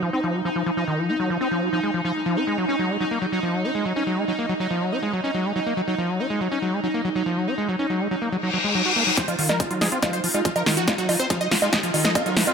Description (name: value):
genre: psychedelic trance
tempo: 141 BPM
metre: 4/4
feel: straight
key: F phrygian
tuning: A4 = 440 Hz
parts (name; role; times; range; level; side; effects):
- pulsing gated texture; sustained chords; 0.0-12.5 s; Eb4; -27 LUFS; right 1 dB; chorus, built-in reverb, sidechain pumping
- overdriven acid bass; riff; 0.0-12.5 s; Eb3 to Gb4; -25 LUFS; equal; auto-pan, cassette tape, sidechain pumping, digital delay
- reverse cymbal and riser; sound effects; 8.4-12.5 s; none; -26 LUFS; left 4 dB; none
- supersaw stab; melody; 9.2-12.5 s; F4 to Eb5; -26 LUFS; right 1 dB; phaser, sidechain pumping, low-pass filter, digital delay
- big-room dance drum kit; drums; 9.2-12.5 s; bongos, hi-hat, snare drum; -22 LUFS; right 1 dB; none
- electronic kick drum; drums; 9.2-12.2 s; none; -26 LUFS; equal; high-pass filter on kick, high-pass filter on room
room: moderate lush hall reverb, RT60 1.9 s, digital ambience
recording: none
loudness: -21 LUFS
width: side -6 dB against mid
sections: 0.0-9.2 A section; 9.2-12.5 B section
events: reverse cymbal 8.4-9.2; build-up 9.2-12.5; drum fill 9.2-12.5; filter sweep on acid bass 9.2-12.5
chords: 0.0 F5; 2.4 Gb5; 9.2 F5